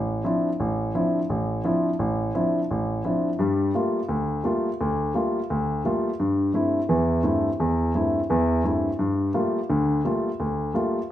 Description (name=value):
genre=jazz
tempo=171 BPM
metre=4/4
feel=swing 63% on 8ths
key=D minor, G dorian from 3.4 s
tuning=A4 = 441 Hz
part: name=warm grand piano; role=solo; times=0.0-11.0 s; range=A1 to F4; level=-22 LUFS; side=equal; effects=none
room=wet large studio reverb, RT60 1.0 s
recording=heard from further back in the room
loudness=-22 LUFS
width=side -12 dB against mid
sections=0.0-3.4 A section; 3.4-11.1 B section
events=none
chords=0.0 Dm9; 3.4 Gm9; 6.2 Am; 9.0 Gm9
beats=0.24 | 0.59 0.95 1.30 1.65 | 2.00 2.35 2.70 3.05 | 3.40 3.75 4.10 4.45 | 4.80 5.15 5.50 5.85 | 6.20 6.55 6.90 7.25 | 7.60 7.95 8.30 8.65 | 9.00 9.35 9.70 10.05 | 10.39 10.74